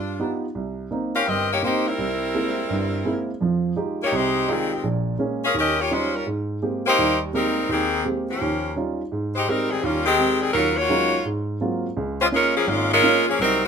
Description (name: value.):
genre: jazz.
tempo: 168 BPM.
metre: 4/4.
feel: swing 66% on 8ths.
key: Ab major.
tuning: A4 = 440 Hz.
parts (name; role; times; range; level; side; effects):
edgy saxophone section; melody; 0.0-13.7 s; Eb3 to F5; -20 LUFS; left 1 dB; none.
warm baby grand piano; accompaniment; 0.0-13.7 s; G1 to G4; -24 LUFS; right 2 dB; none.
room: moderate club reverb, RT60 0.7 s.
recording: minimal, uncompressed stereo recording.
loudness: -20 LUFS.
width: side -6 dB against mid.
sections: 0.0-9.1 A section; 9.1-13.7 B section.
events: none.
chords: 0.0 G7b13; 0.6 Cm7; 2.0 C7b13; 3.4 Fm9; 4.8 Bbm7; 5.5 Eb9; 6.3 Abmaj9; 8.4 Eb9; 9.1 Abmaj7; 10.5 Ebm11; 11.3 Ab13; 12.0 Db6.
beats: 0.20 | 0.55 0.91 1.26 1.62 | 1.98 2.33 2.69 3.05 | 3.40 3.76 4.12 4.47 | 4.83 5.19 5.54 5.90 | 6.26 6.62 6.97 7.33 | 7.68 8.04 8.40 8.76 | 9.11 9.47 9.82 10.18 | 10.54 10.89 11.25 11.61 | 11.96 12.32 12.68 13.03 | 13.39.